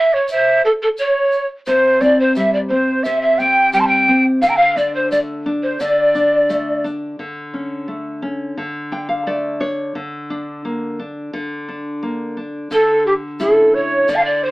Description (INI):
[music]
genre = andean folk, Andean ensemble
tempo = 87 BPM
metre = 2/4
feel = straight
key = D minor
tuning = A4 = 440 Hz
[part]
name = reedy pan flute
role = melody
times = 0.0-6.8, 12.7-14.5 s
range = G4 to A5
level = -15 LUFS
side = equal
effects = none
[part]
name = breathy large quena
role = second line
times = 0.0-6.8, 12.7-14.5 s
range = G4 to C6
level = -18 LUFS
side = right 1 dB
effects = none
[part]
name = egg shaker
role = percussion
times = 0.3-7.0, 12.7-14.2 s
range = none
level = -40 LUFS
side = left 2 dB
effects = none
[part]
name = nylon-string guitar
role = accompaniment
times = 1.7-14.5 s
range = C3 to G5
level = -21 LUFS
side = left 1 dB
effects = none
[sound]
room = moderate studio ambience, RT60 0.5 s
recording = AM radio sound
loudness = -14 LUFS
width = side -20 dB against mid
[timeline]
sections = 0.0-7.2 A section; 7.2-12.7 B section; 12.7-14.5 C section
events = nylon-string guitar fill 8.6-10.0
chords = 0.0 N.C.; 1.7 C5; 4.4 D5; 7.2 A/D; 8.6 D5; 10.0 Bb/D; 12.7 A/D